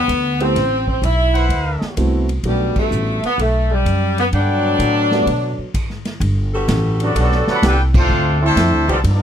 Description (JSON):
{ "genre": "jazz, big band swing", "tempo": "127 BPM", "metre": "4/4", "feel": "swing 67% on 8ths", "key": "G major", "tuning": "A4 = 439 Hz", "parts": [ { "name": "mellow saxophone section", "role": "melody", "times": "0.0-5.7 s", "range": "G3 to E4", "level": "-18 LUFS", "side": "left 2 dB", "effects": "none" }, { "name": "warm trumpet section", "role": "stabs", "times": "0.0-5.1 s", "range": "E4 to G5", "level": "-24 LUFS", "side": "equal", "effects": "none" }, { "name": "upright bass", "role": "bass", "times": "0.0-9.2 s", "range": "G1 to B2", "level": "-18 LUFS", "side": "equal", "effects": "none" }, { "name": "swinging big-band drum kit", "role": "drums", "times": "0.1-9.2 s", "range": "crash cymbal, hi-hat, kick drum, ride cymbal, snare drum", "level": "-22 LUFS", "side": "equal", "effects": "none" }, { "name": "warm grand piano", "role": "accompaniment", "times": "0.4-5.3 s", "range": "G3 to G4", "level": "-22 LUFS", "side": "right 4 dB", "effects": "none" }, { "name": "clear trombone section", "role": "second line", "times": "4.3-9.2 s", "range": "B2 to G4", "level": "-22 LUFS", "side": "right 2 dB", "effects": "none" }, { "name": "mellow saxophone section", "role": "sustained chords", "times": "6.5-9.0 s", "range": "F3 to A4", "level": "-23 LUFS", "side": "equal", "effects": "none" }, { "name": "mellow trumpet section", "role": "melody", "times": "7.0-9.2 s", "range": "B3 to B5", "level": "-19 LUFS", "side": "left 2 dB", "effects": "none" } ], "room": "light reverb", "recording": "close, detailed microphones", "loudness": "-14 LUFS", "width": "side -9 dB against mid", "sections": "0.0-6.2 A section; 6.2-9.2 B section", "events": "band accent 2.7, 7.9; stop 5.7-6.2", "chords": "0.0 Em7; 0.6 Amadd9; 1.5 D13; 2.4 Gmaj9; 8.1 Dm7" }